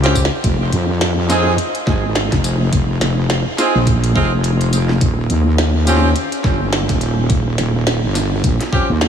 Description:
glitch hop; 105 BPM; 4/4; swing 58% on 16ths; F minor; A4 = 442 Hz
clear horn section; stabs; 0.0-8.9 s; C4 to Ab4; -21 LUFS; right 1 dB; sidechain pumping, analog delay
wobble bass; bass; 0.0-9.1 s; Eb1 to F2; -16 LUFS; equal; chorus
glitchy drum kit; drums; 0.0-9.1 s; hi-hat, snare drum, tambourine; -21 LUFS; equal
electronic kick drum; drums; 0.2-8.9 s; -18 LUFS; equal; overdrive
light reverb, digital ambience; -14 LUFS; side -8 dB against mid
0.0-9.1 A section
drum fill 0.0-0.4
0.4 Fm7; 5.0 Eb

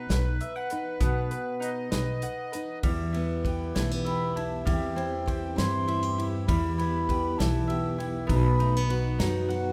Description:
acoustic folk duo or small band; 66 BPM (dotted quarters); 6/8; straight; E minor; A4 = 441 Hz
accordion; second line; 0.0-2.8 s; B4 to D#5; -40 LUFS; equal
fingerpicked steel-string acoustic guitar; accompaniment; 0.0-9.7 s; E2 to G4; -34 LUFS; equal
mandolin; arpeggios; 0.0-9.7 s; G3 to F#5; -38 LUFS; equal
upright bass; bass; 0.1-9.7 s; B1 to G2; -31 LUFS; equal
natural country drum kit; drums; 0.1-9.6 s; hi-hat, kick drum, ride cymbal, snare drum; -33 LUFS; equal
mellow tonewheel organ; sustained chords; 2.8-9.7 s; E3 to G4; -41 LUFS; equal; slow rotary speaker
baroque flute; melody; 4.1-8.9 s; G5 to C6; -35 LUFS; equal
light reverb; -28 LUFS; mono
0.0-2.8 A section; 2.8-9.7 B section
0.0 B; 2.8 Em; 4.7 C/E; 6.5 Em; 8.3 B

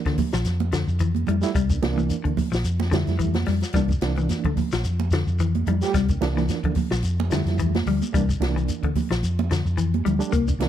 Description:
afrobeat; 110 BPM; 4/4; swing 55% on 16ths; A4 = 440 Hz
overdriven reed electric piano; accompaniment; 0.0-10.7 s; E3 to G4; -28 LUFS; right 10 dB; fast tremolo
clean electric guitar; arpeggios; 0.1-10.5 s; D3 to Bb3; -27 LUFS; left 7 dB
compact cocktail drum kit; drums; 0.1-10.7 s; hi-hat, kick drum, snare drum; -27 LUFS; equal
congas; percussion; 0.2-10.7 s; -29 LUFS; right 11 dB
shekere; percussion; 0.2-10.6 s; -31 LUFS; left 2 dB
hollow-body short-scale fingered electric bass; bass; 0.3-10.7 s; Bb1 to F2; -24 LUFS; equal
studio reverb; dry, close 1970s-style studio recording; -20 LUFS; side -11 dB against mid
0.0-10.7 A section
0.5 Fmaj7; 1.6 C7; 2.7 Fmaj7; 3.7 C7; 4.8 Fmaj7; 5.9 C7; 7.0 Fmaj7; 8.1 C7; 9.2 Fmaj7

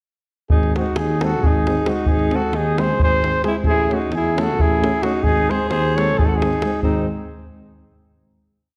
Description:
balkan folk, Balkan brass band; 264 BPM (eighths); 7/8; straight; G# phrygian dominant; A4 = 440 Hz
mellow cornet; melody; 0.5-7.1 s; D#4 to C#5; -24 LUFS; equal
growling alto saxophone; second line; 0.5-7.1 s; B#3 to A4; -28 LUFS; equal
mellow tuba; bass; 0.5-7.1 s; G#1 to E2; -26 LUFS; equal
davul; percussion; 0.5-7.1 s; -24 LUFS; equal
dark euphonium; accompaniment; 0.8-7.1 s; G#3 to A3; -30 LUFS; equal
warm French horn; accompaniment; 0.8-7.1 s; B#3 to C#4; -34 LUFS; equal
wet scoring stage reverb, RT60 1.7 s; dark, warm production; -19 LUFS; mono
0.5-6.8 A section; 6.8-8.4 final chord
0.5 G#; 3.6 A; 5.2 G#

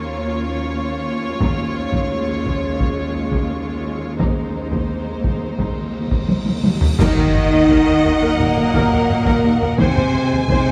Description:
cinematic, epic orchestral film score; 86 BPM; 4/4; straight; Eb dorian; A4 = 439 Hz
warm symphonic violin section; melody; 0.0-10.7 s; C5 to Ab5; -30 LUFS; equal
warm symphonic violin section; second line; 0.0-10.7 s; Eb4 to Eb5; -31 LUFS; equal
warm symphonic viola section; accompaniment; 0.0-10.7 s; Ab3 to Eb5; -30 LUFS; equal
dark French horn section; sustained chords; 0.0-10.7 s; F3 to Eb4; -24 LUFS; equal
rich symphonic cello section; bass; 0.0-10.7 s; Eb2 to Eb3; -26 LUFS; equal
warm symphonic double bass section; bass; 1.4-2.1, 7.0-10.7 s; Eb2; -26 LUFS; equal
taiko ensemble; drums; 1.4-10.7 s; -23 LUFS; equal
timpani; percussion; 1.4-7.0 s; Eb3; -33 LUFS; equal
cymbal swell, clash cymbals and concert bass drum; percussion; 4.2-8.4 s; -29 LUFS; equal
cymbal swell and impact; sound effects; 6.1-9.8 s; -35 LUFS; equal
bright trombone section; sustained chords; 7.0-10.7 s; F3 to Bb3; -30 LUFS; equal
mellow tuba; bass; 7.0-10.6 s; Eb2; -28 LUFS; equal
wet scoring stage reverb, RT60 1.6 s; dark, warm production; -18 LUFS; mono
0.0-7.0 A section; 7.0-10.7 B section
build-up 0.0-7.0; timpani fill 4.2-7.0; cymbal swell 6.1-7.0; drum fill 6.3-7.0; band accent 7.0-7.7; impact 7.0-9.8
0.0 Bbm/Eb; 1.4 Dbadd9/Eb; 4.2 Ab/Eb; 7.0 Ebm; 9.8 Fm/Eb

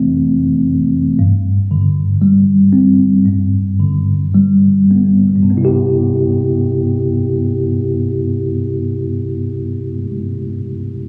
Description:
pop; 53-61 BPM; 4/4; straight; C major; A4 = 440 Hz
mellow tine electric piano; accompaniment; 0.0-11.1 s; C2 to G4; -14 LUFS; equal
wet plate reverb, RT60 3.1 s; recorded on a phone in the room, studio reverb, compression; -14 LUFS; mono
0.0-5.5 A section; 5.5-10.0 B section
slowing down 0.0-5.5
0.0 Fmaj7; 1.2 Gsus4; 3.2 G; 5.5 Cmaj7

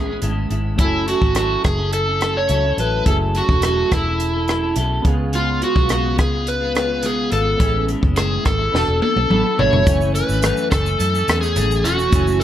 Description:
indie pop, bedroom pop; 106 BPM; 4/4; straight; F# minor; A4 = 440 Hz
overdriven slide guitar; melody; 0.0-12.4 s; E4 to C#5; -20 LUFS; right 1 dB; wide subtle chorus, slapback echo
clean electric guitar; accompaniment; 0.0-12.4 s; F#2 to A4; -25 LUFS; left 2 dB; lush chorus, vibrato effect
warm analog keys; accompaniment; 0.0-12.4 s; A3 to B5; -29 LUFS; right 2 dB; chorus
vintage muted fingered electric bass; bass; 0.0-12.4 s; E1 to F#2; -22 LUFS; equal
compact cocktail drum kit; drums; 0.2-12.4 s; hi-hat, kick drum, rim click, shaker, snare drum, toms; -20 LUFS; equal
light reverb, studio ambience; -16 LUFS; side -11 dB against mid
0.0-9.9 A section; 9.9-12.4 B section
drum fill 8.7-9.9; synth keys fill 9.0-9.9
0.0 Amaj7; 0.8 F#m7; 5.0 C#7; 7.6 Amaj7; 8.7 E7sus4; 9.9 F#m7

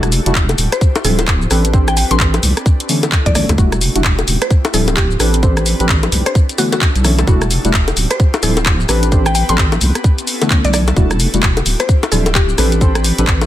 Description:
UK garage, two-step garage; 130 BPM; 4/4; swing 61% on 16ths; E minor; A4 = 440 Hz
airy breathy pad; sustained chords; 0.0-13.5 s; A3 to C5; -26 LUFS; equal; chorus, sidechain pumping
deep mellow chord stab; stabs; 0.0-13.3 s; D3 to C5; -20 LUFS; equal; chorus, dub echo
deep soft wobble bass; bass; 0.0-13.5 s; D1 to D2; -16 LUFS; equal; chorus
garage drum kit; drums; 0.0-13.5 s; bongos, handclaps, hi-hat, rim click, shaker; -17 LUFS; left 1 dB; soft clipping on snare
electronic kick drum; drums; 0.4-13.4 s; -13 LUFS; equal
mallet-like synth pluck; melody; 0.7-12.5 s; F#4 to C6; -21 LUFS; left 1 dB; chorus, dub echo
digital ambience; dense, heavily limited modern master; -11 LUFS; side -13 dB against mid
0.0-13.5 A section
0.0 Em11; 0.6 Dm11; 1.5 Am11; 2.7 Bm11; 3.6 Em11; 4.3 Dm11; 5.2 Am11; 6.4 Bm11; 7.3 Em11; 8.0 Dm11; 8.9 Am11; 10.0 Bm11; 11.0 Em11; 11.7 Dm11; 12.6 Am11

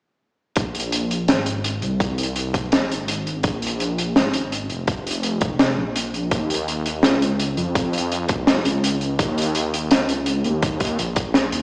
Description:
half-time drum and bass; 167 BPM; 4/4; half-time; Bb minor; A4 = 439 Hz
dark detuned saw bass; bass; 0.6-11.6 s; F1 to F2; -26 LUFS; equal
crunchy breakbeat drum kit; drums; 0.6-11.6 s; hi-hat, rim click, snare drum; -24 LUFS; equal
electronic kick drum; drums; 0.6-11.2 s; -24 LUFS; equal
moderate lush hall reverb, RT60 2.1 s; played on a big sound system in a bare room, large studio reverb, small speaker sound; -22 LUFS; mono
0.6-11.6 A section
drum fill 11.3

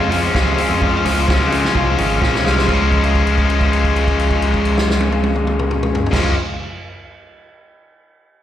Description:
indie rock; 129 BPM; 4/4; straight; Db major; A4 = 439 Hz
electric guitar at the edge of break-up; riff; 0.0-6.3 s; Db3 to F4; -23 LUFS; right 6 dB; ensemble chorus, analog delay, slapback echo
overdriven electric guitar; riff; 0.0-6.3 s; Db3 to F4; -18 LUFS; left 6 dB; slapback echo
modern bright picked electric bass; bass; 0.0-6.3 s; Ab1 to Db3; -19 LUFS; equal
vintage drum kit; drums; 0.1-6.2 s; crash cymbal, hi-hat, kick drum, snare drum, toms; -21 LUFS; right 1 dB
little or no reverb; live gig heard through the venue's PA, recital hall reverb; -14 LUFS; side -11 dB against mid
0.0-2.7 A section; 2.7-6.4 B section
drum fill 2.2-2.7; held note 2.7-6.1
0.0 Dbmaj7; 2.7 Db

